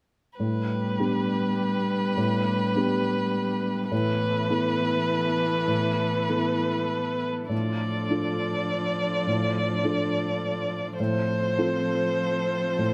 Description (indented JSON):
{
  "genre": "neoclassical piano and strings",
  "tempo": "102 BPM",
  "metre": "3/4",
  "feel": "rubato",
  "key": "unclear",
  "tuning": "A4 = 441 Hz",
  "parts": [
    { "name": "muted violin", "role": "melody", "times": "0.4-12.9 s", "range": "B4 to D5", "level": "-30 LUFS", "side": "equal", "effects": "none" },
    { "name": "muted cello", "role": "second line", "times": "0.4-12.9 s", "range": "E3 to G3", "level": "-33 LUFS", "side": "equal", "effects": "slapback echo" },
    { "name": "felt-muted upright piano", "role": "accompaniment", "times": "0.4-12.9 s", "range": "A2 to A4", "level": "-30 LUFS", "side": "equal", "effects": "none" },
    { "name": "muted chamber string section", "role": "sustained chords", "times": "0.4-12.9 s", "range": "B3 to A4", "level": "-40 LUFS", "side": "equal", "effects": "none" }
  ],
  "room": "moderate large studio reverb, RT60 1.2 s",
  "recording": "close, detailed microphones",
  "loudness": "-26 LUFS",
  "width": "mono",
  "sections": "0.4-12.9 A section",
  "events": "none",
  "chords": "0.4 G/A; 3.9 Asus2; 7.5 Dm/A; 11.0 F/A"
}